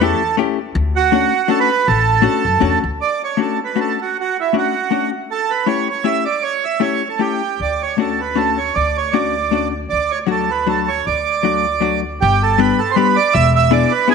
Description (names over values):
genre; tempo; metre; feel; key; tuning
musette waltz; 157 BPM; 3/4; swing 55% on 8ths; D major; A4 = 443 Hz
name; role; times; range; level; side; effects
accordion; melody; 0.0-14.1 s; E4 to E5; -17 LUFS; right 8 dB; slapback echo
hollow-body jazz guitar; accompaniment; 0.0-14.1 s; F#3 to G#4; -19 LUFS; left 14 dB; none
upright bass; bass; 0.0-3.0, 7.6-13.8 s; E1 to F#2; -21 LUFS; left 2 dB; none
room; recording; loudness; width
moderate echo chamber reverb, RT60 2.5 s; 1960s-style stereo with parts hard left and right; -14 LUFS; side -5 dB against mid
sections
0.0-3.0 A section; 3.0-12.2 B section; 12.2-14.1 C section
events
none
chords
0.0 A7; 0.7 Dmaj7; 5.3 A7; 7.6 Dmaj7; 9.9 D; 12.2 G; 13.3 E7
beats
0.01 0.38 | 0.75 1.12 1.49 | 1.86 2.23 2.61 | 3.00 3.38 3.76 | 4.15 4.53 4.91 | 5.29 5.67 6.05 | 6.43 6.82 7.20 | 7.59 7.98 8.37 | 8.76 9.14 9.52 | 9.90 10.29 10.67 | 11.05 11.43 11.82 | 12.21 12.59 12.96 | 13.34 13.71 14.08